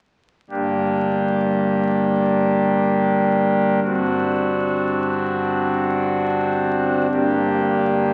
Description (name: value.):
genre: classical, chorale-style piece for pipe organ.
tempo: free time.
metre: none.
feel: none.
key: G minor.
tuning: A4 = 440 Hz.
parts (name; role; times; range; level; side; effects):
pipe organ, foundations; solo; 0.5-8.1 s; G1 to G4; -20 LUFS; equal; none.
room: wet church reverb, RT60 2.5 s.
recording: very old 78 rpm record, vinyl crackle.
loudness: -20 LUFS.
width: mono.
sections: 0.5-8.1 A section.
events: none.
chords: 0.5 Gm; 3.8 D7/G; 7.1 Gm.